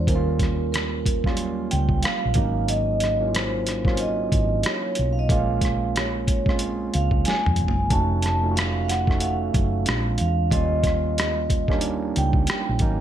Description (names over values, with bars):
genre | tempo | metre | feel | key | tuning
R&B, neo-soul | 92 BPM | 4/4 | swing 60% on 16ths | unclear | A4 = 441 Hz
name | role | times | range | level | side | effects
overdriven tine electric piano | accompaniment | 0.0-13.0 s | Gb3 to Gb4 | -27 LUFS | right 3 dB | none
hollow-body short-scale fingered electric bass | bass | 0.0-13.0 s | F1 to F2 | -25 LUFS | equal | none
vibraphone with soft mallets | melody | 0.1-13.0 s | Bb4 to A5 | -27 LUFS | right 2 dB | none
boom bap sampler-style drum kit | drums | 0.1-13.0 s | hi-hat, kick drum, rim click, snare drum, toms | -24 LUFS | equal | gated reverb
room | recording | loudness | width
light reverb | bright 1980s-style digital production | -20 LUFS | side -10 dB against mid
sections
0.0-13.0 A section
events
drum fill 7.2-7.9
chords
0.1 Eb9; 2.4 Ab7sus4; 5.3 Bbm9; 7.9 F7b9b13; 9.9 Bb9; 10.5 Eb9